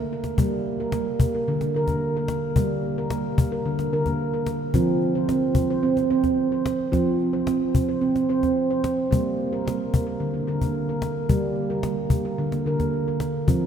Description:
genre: world meditative, meditative tuned percussion.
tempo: 110 BPM.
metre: 4/4.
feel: straight.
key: G minor pentatonic.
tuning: A4 = 440 Hz.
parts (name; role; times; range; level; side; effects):
handpan; arpeggios; 0.0-13.7 s; D3 to C5; -22 LUFS; right 2 dB; ping-pong delay.
cajon; percussion; 0.2-13.6 s; none; -27 LUFS; left 2 dB; none.
room: wet cathedral reverb, RT60 5.1 s.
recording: in a vast, echoing space.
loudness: -21 LUFS.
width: side -8 dB against mid.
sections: 0.4-13.7 A section.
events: none.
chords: 0.4 Gm; 4.7 F5; 9.1 Gm.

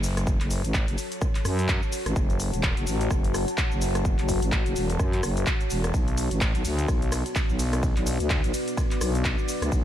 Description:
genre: bass house.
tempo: 127 BPM.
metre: 4/4.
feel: swing 58% on 16ths.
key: F# minor.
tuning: A4 = 441 Hz.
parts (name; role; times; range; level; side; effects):
deep dark ambient pad; sustained chords; 0.0-9.8 s; B3 to A5; -31 LUFS; left 2 dB; chorus, built-in reverb, sidechain pumping.
growling FM bass; bass; 0.0-9.8 s; E1 to F#2; -26 LUFS; equal; tube saturation, sidechain pumping.
big-room dance drum kit; drums; 0.0-9.8 s; handclaps, hi-hat, ride cymbal, rim click, shaker; -31 LUFS; equal; small room ambience.
electronic kick drum; drums; 0.3-9.8 s; none; -26 LUFS; equal; small room ambience.
room: light reverb, digital ambience.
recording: none.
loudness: -23 LUFS.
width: side -11 dB against mid.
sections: 0.0-9.8 A section.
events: none.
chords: 0.0 F#m; 5.9 Bm.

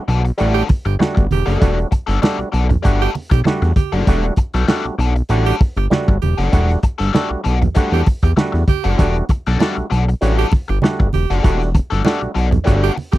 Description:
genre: funk.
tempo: 98 BPM.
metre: 4/4.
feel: straight.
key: E minor.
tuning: A4 = 438 Hz.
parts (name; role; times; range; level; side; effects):
overdriven clav; stabs; 0.0-12.9 s; G3 to F#4; -22 LUFS; right 2 dB; auto-wah.
overdriven semi-hollow guitar; accompaniment; 0.1-13.2 s; G3 to A4; -22 LUFS; left 7 dB; wah.
fat analog bass; bass; 0.1-13.2 s; E1 to E2; -16 LUFS; equal; none.
crunchy breakbeat drum kit; drums; 0.1-13.2 s; hi-hat, kick drum, snare drum; -15 LUFS; equal; none.
breathy tenor saxophone; second line; 0.5-13.2 s; G4; -23 LUFS; right 18 dB; none.
congas; percussion; 0.7-13.1 s; none; -22 LUFS; right 4 dB; none.
room: little or no reverb.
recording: dry, close 1970s-style studio recording.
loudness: -14 LUFS.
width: side -16 dB against mid.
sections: 0.0-13.2 A section.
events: none.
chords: 0.0 Em11.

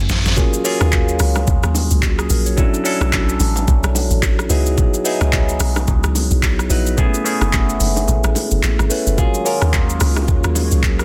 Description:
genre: amapiano.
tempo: 109 BPM.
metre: 4/4.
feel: swing 58% on 16ths.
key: Eb phrygian.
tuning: A4 = 441 Hz.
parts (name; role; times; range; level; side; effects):
barky tine electric piano; accompaniment; 0.0-11.0 s; Gb3 to Ab5; -23 LUFS; equal; phaser.
lush unison pad; sustained chords; 0.0-0.4, 9.2-11.0 s; Eb3 to Db5; -34 LUFS; equal; chorus.
deep log drum bass; bass; 0.0-11.0 s; Gb1 to Eb2; -20 LUFS; equal; none.
smooth R&B drum kit; drums; 0.1-11.0 s; handclaps, hi-hat, kick drum, rim click, shaker, snare drum; -21 LUFS; equal; none.
congas and bongos; percussion; 0.4-11.0 s; none; -30 LUFS; equal; none.
room: little or no reverb.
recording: dense, heavily limited modern master.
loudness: -17 LUFS.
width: mono.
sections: 0.4-11.0 A section.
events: drum fill 0.0-0.4; drop 0.4-11.0; kick muted 8.1-9.2.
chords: 0.4 Ebm11; 2.6 Bm11; 4.5 Dbm11; 7.0 Gbm11; 9.2 Ebm11.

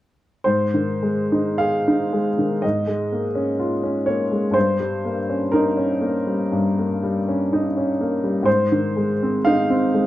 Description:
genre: classical, romantic nocturne for solo piano.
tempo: 50-65 BPM.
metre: 4/4.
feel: rubato.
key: Ab major.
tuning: A4 = 440 Hz.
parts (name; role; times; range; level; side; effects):
clear upright piano; solo; 0.4-10.1 s; G2 to F5; -18 LUFS; equal; none.
room: light reverb.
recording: dark, warm production.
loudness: -18 LUFS.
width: side -14 dB against mid.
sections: 0.5-10.1 A section.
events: none.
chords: 0.5 Ab; 2.6 Bbm7/Ab; 4.6 Eb7/G; 8.5 Ab.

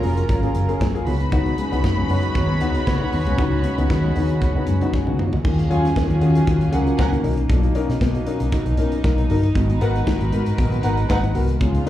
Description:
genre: disco.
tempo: 116 BPM.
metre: 4/4.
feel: straight.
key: unclear.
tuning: A4 = 440 Hz.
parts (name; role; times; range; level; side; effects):
dark studio violin section; second line; 0.0-11.3 s; C#4 to B5; -28 LUFS; right 1 dB; slapback echo.
mellow electric guitar; accompaniment; 0.0-11.9 s; F#3 to D#5; -28 LUFS; right 4 dB; harmonic tremolo, slapback echo.
warm concert grand piano; accompaniment; 0.0-11.9 s; G#2 to A#4; -26 LUFS; left 6 dB; slapback echo.
clear studio string section; sustained chords; 0.0-11.9 s; C#3 to B4; -28 LUFS; equal; none.
clear horn section; stabs; 0.0-4.9 s; F#3 to C#5; -30 LUFS; right 1 dB; slapback echo.
vintage muted fingered electric bass; bass; 0.0-11.8 s; E#1 to D#3; -20 LUFS; equal; none.
modern studio drum kit; drums; 0.0-11.9 s; crash cymbal, hi-hat, kick drum, snare drum, toms; -24 LUFS; equal; none.
room: light reverb.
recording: live gig heard through the venue's PA, club reverb.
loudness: -17 LUFS.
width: side -13 dB against mid.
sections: 0.0-5.4 A section; 5.4-11.9 B section.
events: drum fill 4.9-5.4.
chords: 0.0 F#maj7; 1.1 C#9sus4; 5.4 D#m11; 7.2 Bmaj7; 9.6 G#m9.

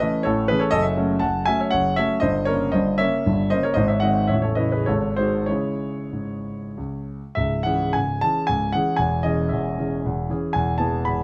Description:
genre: classical, romantic triple-time dance for piano with dotted rhythms.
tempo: 88-131 BPM.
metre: 3/4.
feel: rubato.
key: C# minor.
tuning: A4 = 440 Hz.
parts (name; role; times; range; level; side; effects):
warm concert grand piano; solo; 0.0-11.2 s; A0 to B5; -22 LUFS; equal; none.
room: light reverb.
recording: nothing above 10.9 kHz.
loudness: -22 LUFS.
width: mono.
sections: 0.0-7.4 A section; 7.4-11.2 B section.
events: none.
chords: 0.0 A; 0.7 F#m7; 2.2 Gdim7; 3.8 G#7; 4.3 A; 4.9 G#7; 5.5 C#m; 9.0 C#m/E; 10.5 E.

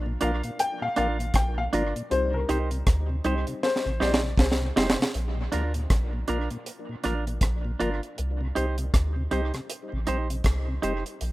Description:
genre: roots reggae.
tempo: 79 BPM.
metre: 4/4.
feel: swing 60% on 16ths.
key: Bb major.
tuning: A4 = 443 Hz.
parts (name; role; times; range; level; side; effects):
warm upright piano; stabs; 0.0-5.1 s; F3 to G5; -29 LUFS; left 3 dB; none.
soft dub sub bass; bass; 0.0-11.3 s; F1 to D2; -28 LUFS; equal; none.
mellow tonewheel organ; accompaniment; 0.1-10.9 s; Bb2 to Eb4; -34 LUFS; left 2 dB; slow rotary speaker, dub echo.
semi-hollow electric guitar; accompaniment; 0.2-11.0 s; D4 to C5; -32 LUFS; right 4 dB; tape echo.
deep reggae drum kit; drums; 0.2-11.3 s; hi-hat, kick drum, rim click, snare drum; -25 LUFS; equal; dub echo.
room: studio reverb.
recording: rough home demo mix.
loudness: -24 LUFS.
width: side -18 dB against mid.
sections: 0.0-5.1 A section; 5.1-11.3 B section.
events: upright piano solo 0.0-5.1; drum fill 3.6-5.1.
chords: 0.0 Bb; 2.1 Cm; 5.1 Bb; 8.2 Cm.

